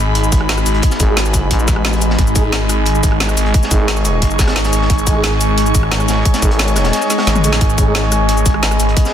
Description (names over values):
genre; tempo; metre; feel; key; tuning
dark technical drum and bass; 177 BPM; 4/4; straight; G# minor; A4 = 443 Hz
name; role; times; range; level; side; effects
swarming drone; sustained chords; 0.0-9.1 s; G#3 to C#5; -21 LUFS; equal; built-in reverb, sidechain pumping
phased detuned saw bass; bass; 0.0-9.0 s; F#1 to A1; -16 LUFS; equal; phaser, tube saturation
airy breathy pad; texture; 0.0-9.1 s; G#4 to C#6; -21 LUFS; equal; chorus, sidechain pumping
crunchy breakbeat drum kit; drums; 0.1-9.1 s; hi-hat, snare drum; -26 LUFS; equal; none
drum and bass drum kit; drums; 0.2-9.1 s; cabasa, hi-hat, rim click, snare drum, toms; -20 LUFS; left 1 dB; overdrive
electronic kick drum; drums; 0.3-9.0 s; none; -14 LUFS; equal; none
dark brass ensemble; stabs; 1.0-8.0 s; G#3 to G#4; -25 LUFS; right 2 dB; none
growling FM bass; bass; 1.0-4.2, 6.4-6.9 s; G#1 to A1; -16 LUFS; equal; tube saturation
room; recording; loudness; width
light reverb, small room ambience; dense, heavily limited modern master; -12 LUFS; side -10 dB against mid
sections
0.0-9.1 A section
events
kick drops out 6.9-7.6; drum fill 7.3-7.6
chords
0.0 G#m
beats
0.15 0.49 | 0.83 1.17 1.51 1.85 | 2.19 2.52 2.86 3.20 | 3.54 3.88 4.22 4.56 | 4.90 5.24 5.58 5.92 | 6.25 6.59 6.93 7.27 | 7.61 7.95 8.29 8.63 | 8.97